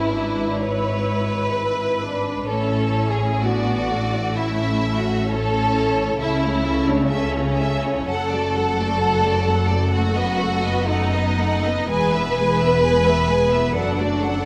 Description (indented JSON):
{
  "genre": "classical, slow romantic movement for string orchestra",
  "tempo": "64 BPM",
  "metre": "4/4",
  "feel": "uneven beats, rubato",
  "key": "A major",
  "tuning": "A4 = 439 Hz",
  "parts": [
    { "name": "clear studio violin section", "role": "melody", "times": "0.0-14.5 s", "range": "B4 to G#5", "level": "-31 LUFS", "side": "equal", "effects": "none" },
    { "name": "warm studio violin section", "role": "second line", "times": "0.0-14.5 s", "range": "C#4 to B4", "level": "-24 LUFS", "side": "equal", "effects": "none" },
    { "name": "warm studio viola section", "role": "accompaniment", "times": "0.0-14.5 s", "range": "F#3 to B4", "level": "-29 LUFS", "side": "equal", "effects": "none" },
    { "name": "rich symphonic cello section", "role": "bass", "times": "0.0-14.5 s", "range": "E2 to C#3", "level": "-28 LUFS", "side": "equal", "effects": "none" },
    { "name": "warm studio double bass section", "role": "bass", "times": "0.0-14.5 s", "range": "E1 to C#2", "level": "-28 LUFS", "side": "equal", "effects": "none" }
  ],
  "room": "wet recital hall reverb, RT60 1.7 s",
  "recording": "none",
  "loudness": "-20 LUFS",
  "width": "mono",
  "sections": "0.0-14.5 A section",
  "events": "none",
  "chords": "0.0 E7/G#; 2.5 A; 6.2 A/C#; 8.1 D/F#; 9.9 B7/F#; 11.9 E; 13.8 D/F#",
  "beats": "0.61 1.56 | 2.49 3.42 4.37 5.29 | 6.21 7.11 8.09 9.02 | 9.93 10.89 11.90 12.83 | 13.76"
}